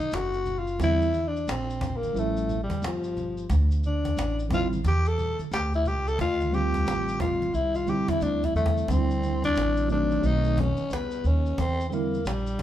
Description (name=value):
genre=hip hop, jazz-hop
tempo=89 BPM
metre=4/4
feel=swing 63% on 16ths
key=D minor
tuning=A4 = 440 Hz
part: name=growling tenor saxophone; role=melody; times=0.0-12.6 s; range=F3 to A4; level=-28 LUFS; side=left 2 dB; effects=none
part: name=upright bass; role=bass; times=0.0-12.6 s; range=F#1 to E2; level=-27 LUFS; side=equal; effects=none
part: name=cajon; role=drums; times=0.0-12.6 s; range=none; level=-33 LUFS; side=left 1 dB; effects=none
part: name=congas and maracas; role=percussion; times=0.0-12.6 s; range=none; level=-41 LUFS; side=right 1 dB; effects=none
part: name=tine electric piano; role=accompaniment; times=0.8-12.2 s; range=D3 to F4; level=-29 LUFS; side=right 3 dB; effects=medium stereo tremolo
room=moderate large studio reverb, RT60 1.1 s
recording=band playing live in one room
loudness=-23 LUFS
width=side -12 dB against mid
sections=0.0-8.9 A section; 8.9-12.6 B section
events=tenor saxophone solo 0.0-8.9; drum fill 8.2-8.9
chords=0.0 B (rootless); 0.8 Em7b5; 2.1 A7b13; 3.5 Dm11; 8.9 D9sus4; 10.2 B7b9; 11.6 Em7b5